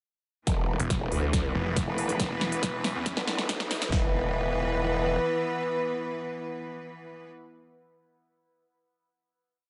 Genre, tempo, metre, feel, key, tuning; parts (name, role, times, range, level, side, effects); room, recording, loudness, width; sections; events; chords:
heavy wobble dubstep; 139 BPM; 4/4; half-time; A4 = 440 Hz
clear studio string section; sustained chords; 0.5-7.3 s; E3 to B4; -36 LUFS; equal; sidechain pumping
growl bass; bass; 0.5-5.2 s; E1 to D2; -32 LUFS; equal; chorus, overdrive
big-room dance drum kit; drums; 0.5-4.0 s; kick drum, snare drum; -32 LUFS; equal; overdrive
big-room dance drum kit; drums; 0.5-3.9 s; hi-hat, snare drum; -34 LUFS; equal; overdrive
riser; sound effects; 1.6-3.9 s; -44 LUFS; equal
snarling distorted saw bass; bass; 0.8-3.2 s; E1 to E2; -34 LUFS; equal; distortion, overdrive
dark brass ensemble; stabs; 1.7-7.3 s; B3 to B4; -35 LUFS; equal; dub echo
light reverb, digital ambience; high-pass filter, nothing above 11.0 kHz; -29 LUFS; mono
0.5-3.9 build; 3.9-7.4 final chord
build-up 0.5-3.9; drum fill 0.5-3.9; filter sweep 0.5-3.9
0.5 E5